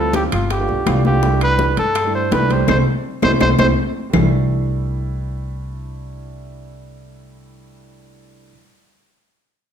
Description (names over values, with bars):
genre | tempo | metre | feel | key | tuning
Afro-Cuban jazz | 165 BPM | 4/4 | straight | C major | A4 = 440 Hz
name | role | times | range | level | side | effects
breathy trumpet | melody | 0.0-3.7 s | F4 to C5 | -19 LUFS | equal | none
warm concert grand piano | accompaniment | 0.0-8.5 s | G3 to G4 | -24 LUFS | right 4 dB | none
upright bass | bass | 0.0-8.5 s | G1 to G2 | -20 LUFS | equal | none
bongos | percussion | 0.1-4.2 s | none | -28 LUFS | left 7 dB | none
congas | percussion | 0.1-4.2 s | none | -23 LUFS | left 3 dB | none
timbales | percussion | 0.1-4.2 s | none | -26 LUFS | right 5 dB | none
claves | percussion | 0.3-4.2 s | none | -30 LUFS | left 8 dB | none
room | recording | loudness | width
wet large studio reverb, RT60 1.2 s | none | -15 LUFS | side -8 dB against mid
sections
0.0-4.1 A section; 4.1-7.0 B section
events
band accent 2.7-4.1; drum fill 3.6-4.1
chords
0.0 Dm11; 0.5 G9; 1.2 C69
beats
0.15 0.51 0.87 | 1.23 1.60 1.96 2.32 | 2.69 3.05 3.41 3.77 | 4.14 4.50 4.86 5.23 | 5.59 5.96 6.32 6.68